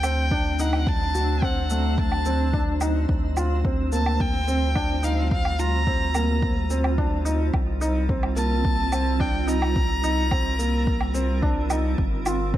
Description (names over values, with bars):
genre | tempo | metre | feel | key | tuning
piano and strings electronica | 108 BPM | 4/4 | straight | unclear | A4 = 443 Hz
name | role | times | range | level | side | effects
warm violin | melody | 0.0-11.4 s | F5 to Bb5 | -29 LUFS | equal | none
granular cloud pad | sustained chords | 0.0-12.6 s | F#3 to C5 | -31 LUFS | right 2 dB | built-in reverb, sidechain pumping
felt-muted upright piano | riff | 0.0-12.6 s | A3 to F#4 | -28 LUFS | equal | digital delay
round analog bass | bass | 0.0-12.6 s | G1 to D2 | -25 LUFS | equal | sidechain pumping
shaker and woodblock | drums | 0.0-12.4 s | none | -32 LUFS | right 1 dB | overdrive
electronic kick drum | drums | 0.3-12.6 s | none | -25 LUFS | equal | overdrive
room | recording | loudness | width
light reverb | none | -21 LUFS | side -13 dB against mid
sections
0.0-12.6 A section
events
none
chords
0.0 D7; 3.1 Bb/D; 7.5 Cm7; 12.0 Gm7